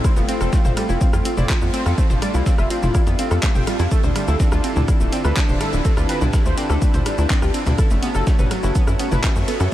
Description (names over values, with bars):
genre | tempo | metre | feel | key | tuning
melodic techno | 124 BPM | 4/4 | straight | unclear | A4 = 440 Hz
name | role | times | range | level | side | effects
fat analog lead | melody | 0.0-9.7 s | C#4 to G5 | -27 LUFS | equal | wide subtle chorus, sidechain pumping, tape echo
lush unison pad | sustained chords | 0.0-9.7 s | D3 to B4 | -28 LUFS | equal | chorus, sidechain pumping
analog pluck | arpeggios | 0.0-9.7 s | F#3 to C5 | -28 LUFS | equal | chorus, sidechain pumping, tape echo
deep house drum kit | drums | 0.0-9.7 s | handclaps, hi-hat, ride cymbal, rim click, shaker, toms | -26 LUFS | equal | none
dusty soul sampler-style drum kit | drums | 0.0-9.6 s | hi-hat, shaker, snare drum | -39 LUFS | equal | none
electronic kick drum | drums | 0.0-9.3 s | none | -18 LUFS | equal | none
warbly tape-like pad | texture | 0.0-9.7 s | C4 to C6 | -31 LUFS | left 1 dB | chorus, built-in reverb, sidechain pumping
tight sequencer bass | bass | 0.2-9.7 s | D1 to F#2 | -20 LUFS | equal | sidechain pumping
room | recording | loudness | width
light reverb | none | -16 LUFS | side -13 dB against mid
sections
0.0-9.7 A section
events
none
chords
0.0 F; 3.9 Dmadd9; 7.8 F#m